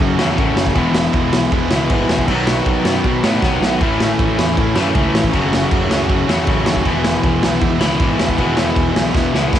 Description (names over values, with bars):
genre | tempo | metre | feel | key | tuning
punk rock | 158 BPM | 4/4 | straight | E major | A4 = 441 Hz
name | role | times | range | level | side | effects
cranked stack guitar | riff | 0.0-9.6 s | E2 to B3 | -18 LUFS | left 7 dB | overdrive
tight distorted guitar | riff | 0.0-9.6 s | A2 to F#4 | -20 LUFS | right 9 dB | distortion
fuzz picked electric bass | bass | 0.0-9.6 s | E1 to B2 | -22 LUFS | right 1 dB | overdrive
raw garage drum kit | drums | 0.0-9.6 s | crash cymbal, kick drum, snare drum | -18 LUFS | equal | cassette tape
room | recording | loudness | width
light reverb | home recording on cassette | -14 LUFS | side -10 dB against mid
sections
0.0-9.6 A section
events
drum fill 3.4-3.8, 9.1-9.6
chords
0.0 F#m; 0.8 E; 2.3 B; 3.8 A; 5.3 F#m; 6.9 E